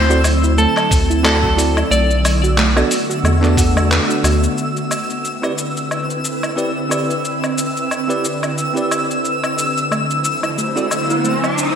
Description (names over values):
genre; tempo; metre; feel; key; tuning
sunset chillout; 90 BPM; 4/4; swing 56% on 16ths; C lydian; A4 = 440 Hz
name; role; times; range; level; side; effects
clean electric guitar; melody; 0.0-3.9 s; A4 to D5; -20 LUFS; left 1 dB; vintage 12-bit sampler grit, ping-pong delay
ethereal airy pad; sustained chords; 0.0-11.8 s; D3 to C5; -22 LUFS; equal; ensemble chorus, built-in reverb, vintage 12-bit sampler grit
soft round pluck; arpeggios; 0.0-4.6, 9.9-11.4 s; A3 to B4; -24 LUFS; right 3 dB; chorus, ping-pong delay
round analog bass; bass; 0.0-4.5 s; B1 to E2; -16 LUFS; equal; none
twinkling granular texture; texture; 0.0-11.8 s; E6; -24 LUFS; equal; built-in reverb
bell-like tine electric piano; accompaniment; 0.1-10.9 s; B3 to D5; -23 LUFS; right 2 dB; auto-pan, ping-pong delay
dusty soul sampler-style drum kit; drums; 0.1-11.7 s; cabasa, handclaps, hi-hat, woodblock; -22 LUFS; left 1 dB; studio reverb, gated reverb
electronic kick drum; drums; 0.9-3.7 s; none; -19 LUFS; equal; studio reverb
riser; sound effects; 10.5-11.8 s; none; -22 LUFS; equal; none
room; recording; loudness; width
wet lush hall reverb, RT60 2.0 s, digital ambience; bright 1980s-style digital production; -14 LUFS; side -8 dB against mid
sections
0.0-4.6 A section; 4.6-11.8 B section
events
riser 10.5-11.8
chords
0.0 D9; 1.9 Bm7; 4.6 Cmaj9; 9.6 D9